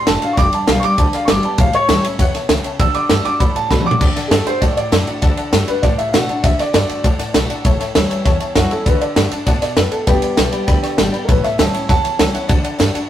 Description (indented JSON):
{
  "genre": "rockabilly",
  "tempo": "198 BPM",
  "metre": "4/4",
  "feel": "straight",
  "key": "D major",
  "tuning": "A4 = 440 Hz",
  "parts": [
    { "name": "dark upright piano", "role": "melody", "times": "0.0-12.8 s", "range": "B3 to E6", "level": "-19 LUFS", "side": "equal", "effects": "none" },
    { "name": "picked steel-string acoustic guitar", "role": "accompaniment", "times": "0.0-13.1 s", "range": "E2 to G4", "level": "-23 LUFS", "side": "left 2 dB", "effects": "none" },
    { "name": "honky-tonk upright piano", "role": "accompaniment", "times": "0.1-13.0 s", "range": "C#5 to D6", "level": "-26 LUFS", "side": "left 4 dB", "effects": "none" },
    { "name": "upright bass", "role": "bass", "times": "0.1-13.0 s", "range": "F#1 to B2", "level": "-22 LUFS", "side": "equal", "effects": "none" },
    { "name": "compact cocktail drum kit", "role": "drums", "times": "0.1-13.0 s", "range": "crash cymbal, kick drum, ride cymbal, snare drum, toms", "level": "-16 LUFS", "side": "equal", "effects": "none" }
  ],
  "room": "light reverb",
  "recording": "rough rehearsal-room recording, tube saturation",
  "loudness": "-13 LUFS",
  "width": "side -11 dB against mid",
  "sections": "0.0-4.0 A section; 4.0-13.1 B section",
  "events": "drum fill 3.7-4.0; upright piano solo 4.0-13.1",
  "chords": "0.4 G; 1.6 A; 2.8 D; 7.6 A7; 8.9 D; 10.1 G; 11.3 A7; 12.5 D"
}